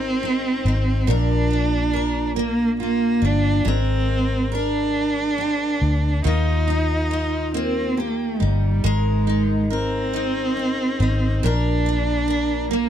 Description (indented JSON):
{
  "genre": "six-eight pop ballad",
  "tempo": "46 BPM (dotted quarters)",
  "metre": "6/8",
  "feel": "straight",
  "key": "unclear",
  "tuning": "A4 = 442 Hz",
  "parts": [
    { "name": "warm cello", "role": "melody", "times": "0.0-12.9 s", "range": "G3 to Eb4", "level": "-23 LUFS", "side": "right 2 dB", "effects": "slapback echo" },
    { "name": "picked steel-string acoustic guitar", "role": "accompaniment", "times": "0.0-12.9 s", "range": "Bb2 to Bb4", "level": "-25 LUFS", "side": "equal", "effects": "double-tracked left and right" },
    { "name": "vintage muted fingered electric bass", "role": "bass", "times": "0.0-12.9 s", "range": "G1 to Eb2", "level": "-22 LUFS", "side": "left 1 dB", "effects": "none" }
  ],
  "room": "little or no reverb",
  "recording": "dry, close 1970s-style studio recording",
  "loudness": "-18 LUFS",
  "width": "side -10 dB against mid",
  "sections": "0.0-12.9 A section",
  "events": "none",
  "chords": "0.0 Abadd9; 1.1 Bb; 3.7 Abadd9; 6.2 Ebadd9; 8.8 Abadd9; 11.4 Bb"
}